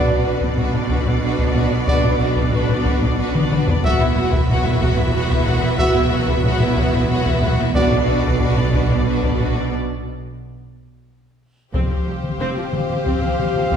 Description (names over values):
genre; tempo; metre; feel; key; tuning
cinematic, epic orchestral film score; 92 BPM; 3/4; straight; B minor; A4 = 440 Hz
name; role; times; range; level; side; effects
rich symphonic violin section; melody; 0.0-13.8 s; B4 to F#5; -28 LUFS; left 4 dB; none
rich symphonic violin section; second line; 0.0-13.8 s; D4 to G4; -28 LUFS; left 2 dB; none
warm symphonic viola section; accompaniment; 0.0-13.8 s; F3 to D4; -26 LUFS; right 2 dB; none
dark French horn section; sustained chords; 0.0-8.0, 11.7-13.8 s; B3 to G4; -27 LUFS; left 2 dB; none
rich symphonic string section; sustained chords; 0.0-13.8 s; B3 to F5; -27 LUFS; equal; none
mellow trumpet; stabs; 0.0-8.0, 11.7-13.8 s; D5 to F5; -25 LUFS; right 2 dB; none
rich studio double bass section; bass; 0.0-13.8 s; E1 to B1; -24 LUFS; right 3 dB; none
rich symphonic cello section; bass; 0.0-13.8 s; E2 to B2; -26 LUFS; right 3 dB; none
solo taiko drums; drums; 0.1-13.8 s; none; -20 LUFS; left 1 dB; none
timpani; percussion; 7.7-8.7 s; B2; -29 LUFS; right 1 dB; none
room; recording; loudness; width
wet scoring stage reverb, RT60 1.6 s; heard from further back in the room; -16 LUFS; side -8 dB against mid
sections
0.0-11.7 A section; 11.7-13.8 B section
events
drum fill 3.3-3.8, 11.2-11.7; break 9.7-11.7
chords
0.0 Bm; 3.8 Esus2; 7.8 Bm; 9.7 N.C.; 11.7 Fsus2